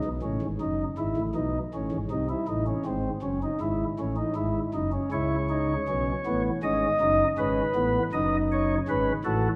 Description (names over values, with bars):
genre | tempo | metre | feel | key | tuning
classical, baroque-style 3-part fugue for pipe organ | 80 BPM | 4/4 | straight | F# minor | A4 = 440 Hz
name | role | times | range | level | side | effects
pipe organ, flutes | solo | 0.0-9.5 s | F#1 to D#5 | -27 LUFS | equal | none
room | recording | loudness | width
wet concert hall reverb, RT60 2.1 s | none | -27 LUFS | mono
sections
0.0-9.6 A section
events
none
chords
0.0 A; 0.6 D#dim/F#; 2.1 G#; 3.6 C#m/G#; 5.1 A/C#; 6.6 F#m